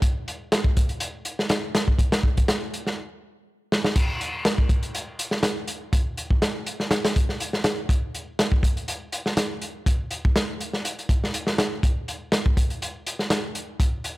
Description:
breakbeat; 122 BPM; 4/4; swing 54% on 16ths
crunchy breakbeat drum kit; drums; 0.0-14.2 s; crash cymbal, hi-hat, kick drum, snare drum; -22 LUFS; equal
little or no reverb; -22 LUFS; side -18 dB against mid
0.0-4.0 A section; 4.0-14.2 B section
stop 3.0-4.0; drum fill 3.7; drop 4.0-14.2

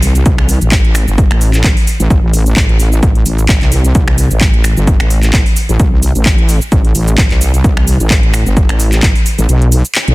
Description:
bass house; 130 BPM; 4/4; swing 55% on 16ths; A minor; A4 = 439 Hz
wobble bass; bass; 0.0-10.1 s; G1 to C2; -11 LUFS; equal; chorus, sidechain pumping
house drum kit; drums; 0.0-10.1 s; cabasa, finger snaps, handclaps, hi-hat; -17 LUFS; equal; overdrive
electronic kick drum; drums; 0.3-9.1 s; -12 LUFS; equal; overdrive
little or no reverb; dense, heavily limited modern master; -8 LUFS; side -20 dB against mid
0.0-10.1 A section
kick drops out 9.5-10.1

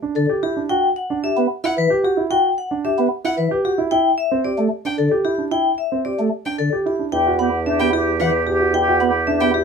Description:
classical, minimalist pattern music; 112 BPM; 3/4; straight; E minor; A4 = 439 Hz
dark grand piano; arpeggios; 0.0-9.6 s; C4 to G4; -21 LUFS; right 4 dB
vibraphone with medium hard mallets; melody; 0.2-9.6 s; G4 to G5; -21 LUFS; left 6 dB
chamber organ, flutes; accompaniment; 0.2-9.5 s; D3 to B3; -20 LUFS; right 1 dB
rich violin; arpeggios; 1.6-9.5 s; F#5 to G5; -25 LUFS; left 2 dB
clear oboe; second line; 7.1-9.6 s; G4; -23 LUFS; right 4 dB
mellow bassoon; bass; 7.1-9.6 s; E2; -23 LUFS; right 2 dB
light reverb; minimal, uncompressed stereo recording; -17 LUFS; side -6 dB against mid
0.0-7.1 A section; 7.1-9.6 A section
0.0 C6 (rootless); 0.7 Em7; 3.9 C6; 7.1 Em7

